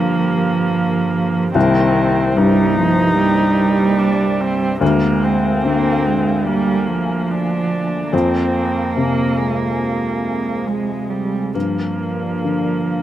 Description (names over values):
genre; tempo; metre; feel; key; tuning
neoclassical piano and strings; 72 BPM; 4/4; uneven beats, rubato; C minor; A4 = 440 Hz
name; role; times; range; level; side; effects
muted cello; second line; 0.0-13.0 s; Eb3 to Bb3; -19 LUFS; right 4 dB; none
dark upright piano; accompaniment; 0.0-13.0 s; C2 to D3; -20 LUFS; left 4 dB; none
muted viola; accompaniment; 0.0-13.0 s; Ab3 to Eb4; -22 LUFS; right 1 dB; none
dark analog pad; sustained chords; 0.0-13.0 s; Bb3 to Ab5; -27 LUFS; left 1 dB; chorus
room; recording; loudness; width
light reverb, small room ambience; rough home demo mix; -15 LUFS; side -12 dB against mid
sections
0.0-13.0 A section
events
none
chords
0.0 Gm7; 1.6 Cm7; 4.8 Bb7/D; 8.1 Fm; 11.5 Gm7